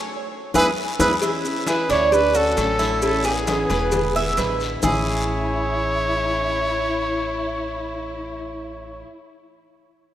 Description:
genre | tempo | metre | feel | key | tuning
latin, Cuban son and guajira | 133 BPM | 4/4 | straight | A major | A4 = 440 Hz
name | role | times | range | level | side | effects
picked steel-string acoustic guitar | accompaniment | 0.5-9.1 s | A2 to F#4 | -31 LUFS | left 2 dB | none
upright bass | bass | 0.5-9.0 s | E1 to E2 | -29 LUFS | equal | none
bongos and cowbell | percussion | 0.5-4.9 s | none | -28 LUFS | left 4 dB | none
congas | percussion | 0.5-4.9 s | none | -33 LUFS | equal | none
guiro | percussion | 0.5-4.9 s | none | -34 LUFS | left 3 dB | none
maracas | percussion | 0.5-4.9 s | none | -33 LUFS | right 2 dB | none
warm trumpet | melody | 0.6-9.0 s | G#4 to C#5 | -24 LUFS | equal | none
Cuban tres | arpeggios | 0.6-9.0 s | E4 to E5 | -24 LUFS | right 3 dB | none
warm studio violin section | second line | 1.7-9.0 s | B3 to E4 | -29 LUFS | left 1 dB | none
room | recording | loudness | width
wet lush hall reverb, RT60 3.0 s | rough home demo mix | -19 LUFS | side -12 dB against mid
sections
0.0-1.2 A section; 1.2-4.8 B section; 4.8-8.4 C section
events
band accent 0.0-1.2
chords
0.3 E7; 1.2 E6; 2.1 Dmaj7; 3.0 Amaj9; 3.9 E7; 4.8 Amaj7

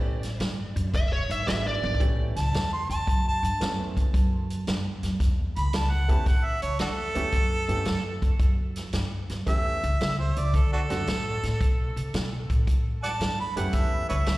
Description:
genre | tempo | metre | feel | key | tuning
electric blues shuffle | 112 BPM | 4/4 | swing 68% on 8ths | A mixolydian | A4 = 441 Hz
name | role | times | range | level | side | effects
warm upright piano | accompaniment | 0.0-14.2 s | G#3 to A4 | -35 LUFS | right 3 dB | slapback echo
upright bass | bass | 0.0-14.4 s | E1 to C3 | -28 LUFS | equal | none
vintage drum kit | drums | 0.2-14.4 s | hi-hat, kick drum, snare drum, toms | -26 LUFS | equal | none
smooth overdriven lead guitar | melody | 1.0-2.0 s | C#5 to E5 | -32 LUFS | equal | slapback echo, analog delay
warm harmonica | second line | 2.4-14.4 s | D4 to C6 | -30 LUFS | right 1 dB | slapback echo, analog delay
room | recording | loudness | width
little or no reverb | live gig heard through the venue's PA, recital hall reverb | -24 LUFS | side -18 dB against mid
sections
0.0-2.0 A section; 2.0-14.4 B section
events
drum fill 1.7; harmonica solo 2.0-14.4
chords
0.0 A7; 0.9 E7; 2.0 A7; 10.5 D7; 12.7 A7

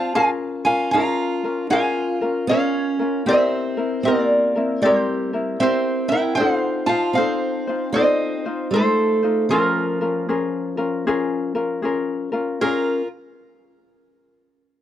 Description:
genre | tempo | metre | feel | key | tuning
Hawaiian | 77 BPM | 4/4 | swing 64% on 8ths | Bb minor | A4 = 439 Hz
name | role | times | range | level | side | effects
lap resonator guitar | melody | 0.0-13.1 s | F4 to Bb5 | -21 LUFS | right 1 dB | none
fingerpicked steel-string acoustic guitar | second line | 0.0-13.1 s | F3 to F4 | -24 LUFS | right 2 dB | none
ukulele | accompaniment | 0.0-13.0 s | C4 to C5 | -23 LUFS | left 3 dB | none
room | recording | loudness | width
little or no reverb | dry, close 1970s-style studio recording | -18 LUFS | side -11 dB against mid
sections
0.0-12.6 A section; 12.6-14.8 B section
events
none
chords
0.2 Bbm7; 3.3 C7; 6.4 F7; 9.5 Bbm7

